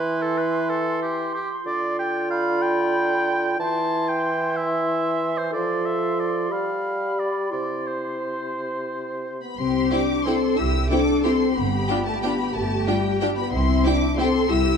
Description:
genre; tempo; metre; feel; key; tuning
classical; 163-202 BPM; 3/4; rubato; C major; A4 = 439 Hz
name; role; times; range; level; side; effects
clear clarinet; second line; 0.0-9.4 s; E4 to A4; -28 LUFS; equal; none
clear oboe; second line; 0.0-9.4 s; G4 to A5; -26 LUFS; right 1 dB; none
silver concert flute; second line; 0.0-9.4 s; B5 to C6; -31 LUFS; right 1 dB; none
warm bassoon; accompaniment; 0.0-9.4 s; C3 to G3; -27 LUFS; right 2 dB; none
rich studio violin section; melody; 9.4-14.8 s; G5 to E6; -29 LUFS; left 4 dB; none
mellow French horn section; sustained chords; 9.4-14.8 s; G3 to E4; -23 LUFS; left 5 dB; none
rich studio cello section; bass; 9.6-14.8 s; E4 to A4; -27 LUFS; right 4 dB; none
rich studio double bass section; bass; 9.6-14.8 s; G1 to C2; -26 LUFS; right 2 dB; none
clear studio violin section; second line; 9.9-14.3 s; G4 to G5; -32 LUFS; left 2 dB; none
rich studio viola section; accompaniment; 9.9-14.3 s; C4 to F4; -28 LUFS; right 2 dB; none
room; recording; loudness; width
wet recital hall reverb, RT60 1.4 s; dark, warm production; -20 LUFS; side -6 dB against mid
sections
0.0-9.6 A section; 9.6-14.8 A section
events
none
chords
0.0 C/E; 1.7 G7/D; 3.6 C/E; 5.5 Dm7/F; 6.5 G7; 7.5 C; 11.6 G7; 13.5 C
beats
0.05 0.39 | 0.70 1.01 1.35 | 1.66 1.98 2.31 | 2.62 2.94 3.28 | 3.60 3.91 4.25 | 4.57 4.89 5.22 | 5.54 5.86 6.19 | 6.51 6.84 7.19 | 7.52 7.87 8.23 | 8.57 8.91 9.26 | 9.58 9.91 10.25 | 10.57 10.90 11.24 | 11.56 11.89 12.23 | 12.55 12.87 13.21 | 13.53 13.85 14.19 | 14.50

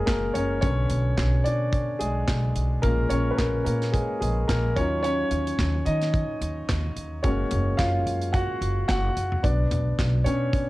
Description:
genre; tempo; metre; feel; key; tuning
piano-driven pop; 109 BPM; 4/4; swing 56% on 16ths; unclear; A4 = 440 Hz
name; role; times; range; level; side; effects
warm concert grand piano; accompaniment; 0.0-10.7 s; D3 to F#5; -26 LUFS; left 1 dB; cassette tape
upright bass; bass; 0.0-10.6 s; F#1 to D#3; -26 LUFS; equal; none
modern studio drum kit; drums; 0.1-10.7 s; handclaps, hi-hat, kick drum, snare drum, toms; -28 LUFS; equal; cassette tape
room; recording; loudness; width
light reverb; home recording on cassette; -22 LUFS; side -18 dB against mid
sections
0.0-10.7 A section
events
grand piano solo 0.0-10.7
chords
0.0 F#add9; 0.6 Bmadd9; 2.8 A#m7; 4.8 D#madd9; 7.2 F#add9; 9.4 Bmadd9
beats
0.08 | 0.63 1.18 1.73 2.28 | 2.83 3.38 3.94 4.49 | 5.04 5.59 6.14 6.69 | 7.24 7.79 8.34 8.89 | 9.44 9.99 10.54

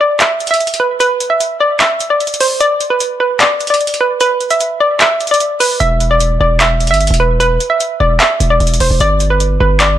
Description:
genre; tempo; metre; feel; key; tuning
hip hop, trap; 150 BPM; 4/4; half-time; E minor; A4 = 440 Hz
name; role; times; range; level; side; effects
hollow square pluck; melody; 0.0-10.0 s; B4 to E5; -12 LUFS; right 1 dB; chorus, tape echo
booming analog drum machine; drums; 0.2-9.9 s; handclaps, hi-hat; -15 LUFS; equal; vintage 12-bit sampler grit
distorted 808-style bass; bass; 5.8-10.0 s; E1 to G1; -13 LUFS; equal; distortion
room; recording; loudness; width
light reverb; lossy compression artefacts; -10 LUFS; side -11 dB against mid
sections
0.0-10.0 A section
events
break 0.0-5.8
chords
0.0 N.C.; 5.8 E5; 9.0 G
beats
0.20 0.60 | 1.00 1.40 1.80 2.20 | 2.60 3.00 3.40 3.80 | 4.20 4.60 5.00 5.40 | 5.80 6.20 6.60 7.00 | 7.40 7.80 8.20 8.60 | 9.00 9.40 9.80

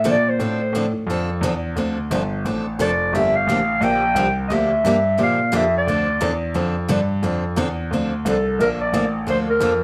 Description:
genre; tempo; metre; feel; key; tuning
acoustic string swing (jazz manouche); 176 BPM; 4/4; swing 59% on 8ths; D minor; A4 = 440 Hz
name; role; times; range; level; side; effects
growling clarinet; melody; 0.0-9.8 s; A4 to G5; -22 LUFS; equal; none
picked steel-string acoustic guitar; accompaniment; 0.0-9.7 s; D3 to A4; -27 LUFS; equal; none
clear grand piano; bass; 0.0-9.8 s; F1 to Bb2; -24 LUFS; equal; none
room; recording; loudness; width
moderate studio reverb, RT60 0.7 s; dark, warm production; -20 LUFS; mono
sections
0.0-9.8 A section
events
none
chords
0.0 Dm7; 3.1 Gm7; 5.9 Dm7; 8.6 Bbmaj7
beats
0.05 | 0.39 0.73 1.07 1.42 | 1.76 2.10 2.44 2.78 | 3.12 3.47 3.81 4.15 | 4.49 4.84 5.18 5.52 | 5.86 6.20 6.54 6.88 | 7.23 7.57 7.91 8.25 | 8.59 8.93 9.27 9.61

